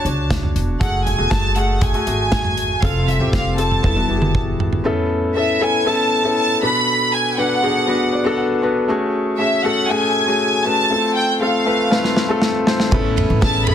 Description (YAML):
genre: piano-driven pop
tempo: 119 BPM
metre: 4/4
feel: straight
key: A major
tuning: A4 = 440 Hz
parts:
  - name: warm studio violin section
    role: melody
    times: 0.0-13.7 s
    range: E5 to B5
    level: -20 LUFS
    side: equal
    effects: none
  - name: felt-muted upright piano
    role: accompaniment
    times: 0.0-13.7 s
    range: A2 to A5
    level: -19 LUFS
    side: left 2 dB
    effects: none
  - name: upright bass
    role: bass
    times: 0.0-4.8, 12.9-13.7 s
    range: E1 to C#2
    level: -21 LUFS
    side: equal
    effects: none
  - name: modern studio drum kit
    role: drums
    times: 0.1-4.8, 11.9-13.7 s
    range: hi-hat, kick drum, ride cymbal, snare drum, toms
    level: -20 LUFS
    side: equal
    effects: none
  - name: picked steel-string acoustic guitar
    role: riff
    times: 12.9-13.7 s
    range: A3 to B4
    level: -26 LUFS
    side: right 7 dB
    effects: none
room: light reverb, studio reverb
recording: dense, heavily limited modern master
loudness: -15 LUFS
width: side -9 dB against mid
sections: 0.0-4.8 A section; 4.8-13.7 B section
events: drum fill 3.8-4.8, 11.9-12.9; felt piano fill 7.9-8.9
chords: 0.0 Dmaj7; 0.8 F#madd9; 2.8 F; 3.8 Esus4; 4.8 Aadd9; 6.6 Bm7; 8.9 F#madd9; 10.9 F; 12.9 Aadd9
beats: 0.30 | 0.81 1.31 1.82 2.32 | 2.83 3.33 3.84 4.34 | 4.85 5.35 5.86 6.36 | 6.87 7.37 7.88 8.38 | 8.88 9.39 9.89 10.40 | 10.90 11.40 11.91 12.41 | 12.92 13.42